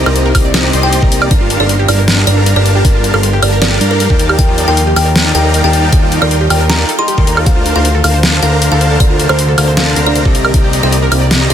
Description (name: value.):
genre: future bass.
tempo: 156 BPM.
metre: 4/4.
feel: half-time.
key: G minor.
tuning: A4 = 441 Hz.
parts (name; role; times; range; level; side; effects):
shimmering ambient pad; sustained chords; 0.0-11.5 s; C3 to G4; -22 LUFS; left 1 dB; chorus, built-in reverb, phaser, sidechain pumping.
supersaw chords; riff; 0.0-11.5 s; G3 to C6; -16 LUFS; equal; cassette tape, sidechain pumping.
fat analog bass; bass; 0.0-11.5 s; G1 to G2; -13 LUFS; equal; tube saturation, sidechain pumping.
kalimba; melody; 0.1-11.5 s; A4 to C6; -17 LUFS; equal; sidechain pumping, ping-pong delay.
wide unison pluck; arpeggios; 0.1-11.4 s; F4 to Bb5; -22 LUFS; right 2 dB; sidechain pumping, ping-pong delay.
dubstep drum kit; drums; 0.1-11.5 s; hi-hat, snare drum, woodblock; -15 LUFS; equal; overdrive.
electronic kick drum; drums; 0.3-10.6 s; none; -11 LUFS; equal; overdrive.
room: little or no reverb.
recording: dense, heavily limited modern master.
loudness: -8 LUFS.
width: side -9 dB against mid.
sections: 0.0-11.5 A section.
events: none.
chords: 0.0 Cm9; 1.3 Gm9; 4.2 Ebmaj9#11; 7.5 Bbmaj9/D; 10.3 Cm9.